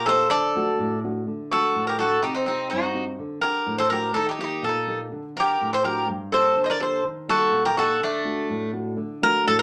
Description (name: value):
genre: greek folk, Greek bouzouki band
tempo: 124 BPM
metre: 2/4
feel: straight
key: D phrygian dominant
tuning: A4 = 441 Hz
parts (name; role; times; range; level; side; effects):
- Greek bouzouki; melody; 0.0-9.6 s; D4 to Eb5; -26 LUFS; equal; none
- Greek bouzouki; second line; 0.0-8.7 s; A3 to C5; -26 LUFS; equal; none
- nylon-string guitar; accompaniment; 0.0-9.6 s; G2 to F#5; -32 LUFS; equal; none
room: wet small room reverb, RT60 0.6 s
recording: none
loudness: -24 LUFS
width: mono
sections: 0.0-1.3 A section; 1.3-9.0 B section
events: none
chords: 0.3 D; 2.2 Cm; 3.2 D; 4.2 Eb; 5.1 D; 6.1 Gm; 7.0 Eb; 8.0 D